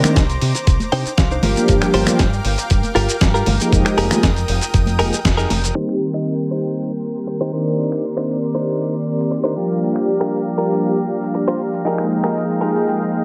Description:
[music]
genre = nu-disco, nu disco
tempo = 118 BPM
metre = 4/4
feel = straight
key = F dorian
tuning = A4 = 440 Hz
[part]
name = mellow synth brass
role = accompaniment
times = 0.0-13.2 s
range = Eb3 to G5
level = -22 LUFS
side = equal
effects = chorus, digital delay
[part]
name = lush unison pad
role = sustained chords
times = 0.0-13.2 s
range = Ab3 to Eb6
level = -29 LUFS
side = equal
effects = chorus, sidechain pumping
[part]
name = direct-recorded clean electric guitar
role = riff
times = 0.0-13.0 s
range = D4 to G5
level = -25 LUFS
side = equal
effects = subtle chorus, low-pass filter
[part]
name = fingered electric bass with an envelope filter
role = bass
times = 0.0-5.7 s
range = F1 to C3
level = -23 LUFS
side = equal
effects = none
[part]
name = dusty soul sampler-style drum kit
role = drums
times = 0.0-13.1 s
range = finger snaps, hi-hat, shaker, snare drum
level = -25 LUFS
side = equal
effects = overdrive
[part]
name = congas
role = percussion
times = 0.0-5.6 s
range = none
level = -25 LUFS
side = equal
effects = none
[part]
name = electronic kick drum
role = drums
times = 0.2-5.4 s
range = none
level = -20 LUFS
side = equal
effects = overdrive
[sound]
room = light reverb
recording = low-pass filter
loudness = -18 LUFS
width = mono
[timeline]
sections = 0.0-5.8 A section; 5.8-13.2 B section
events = clean electric guitar fill 0.7-1.7; band accent 5.2; filter sweep 5.8-13.2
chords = 0.0 Cm9; 1.4 Gm7; 3.7 Fm11; 5.8 Eb6; 7.5 Cm9; 9.6 Gm7; 11.9 Fm11

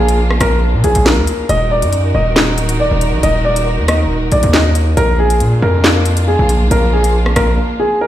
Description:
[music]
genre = hip hop, drill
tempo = 138 BPM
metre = 4/4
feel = half-time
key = Eb harmonic minor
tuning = A4 = 442 Hz
[part]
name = dark upright piano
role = melody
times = 0.0-8.1 s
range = Ab4 to Eb5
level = -16 LUFS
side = equal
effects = low-pass filter, ping-pong delay
[part]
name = warm symphonic string section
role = sustained chords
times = 0.0-8.1 s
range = Eb3 to Bb4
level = -21 LUFS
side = right 1 dB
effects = none
[part]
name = distorted 808-style bass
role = bass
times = 0.0-7.6 s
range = D1 to Bb2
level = -14 LUFS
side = equal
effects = distortion
[part]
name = drill drum kit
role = drums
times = 0.1-7.5 s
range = handclaps, hi-hat, rim click, snare drum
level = -16 LUFS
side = equal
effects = none
[sound]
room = light reverb, small room ambience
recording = played on a big sound system in a bare room, large studio reverb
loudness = -11 LUFS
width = side -12 dB against mid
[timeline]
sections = 0.0-8.1 A section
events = break 7.6-8.1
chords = 0.0 Bb; 1.5 Ebm; 5.0 Bb

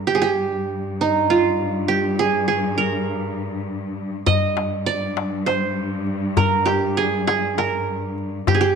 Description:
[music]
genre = Turkish makam ensemble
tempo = 200 BPM (eighths)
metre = 7/8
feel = straight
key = G makam kurdi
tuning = A4 = 440 Hz
[part]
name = qanun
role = melody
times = 0.0-8.8 s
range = Eb4 to Eb5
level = -20 LUFS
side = right 6 dB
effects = none
[part]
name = rich symphonic cello section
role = drone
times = 0.0-8.8 s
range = G2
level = -25 LUFS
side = left 3 dB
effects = none
[part]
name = darbuka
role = percussion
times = 4.3-8.7 s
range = none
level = -22 LUFS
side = left 8 dB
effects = none
[sound]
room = wet echo chamber reverb, RT60 1.4 s, studio reverb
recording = 1960s-style stereo with parts hard left and right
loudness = -19 LUFS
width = side -6 dB against mid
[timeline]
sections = 0.0-8.8 A section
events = none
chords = none

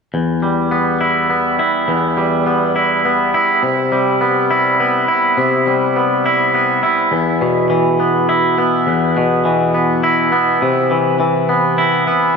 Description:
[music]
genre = rock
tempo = 103 BPM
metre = 3/4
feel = straight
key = E minor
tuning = A4 = 440 Hz
[part]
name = twangy electric guitar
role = arpeggios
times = 0.1-12.4 s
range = E2 to E4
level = -13 LUFS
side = equal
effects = tape echo
[sound]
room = wet lush hall reverb, RT60 3.0 s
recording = none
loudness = -13 LUFS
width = side -5 dB against mid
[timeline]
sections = 0.1-7.1 A section; 7.1-12.4 B section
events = none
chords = 0.1 Em; 3.6 Cmaj7; 7.1 E5; 10.6 Cmaj7

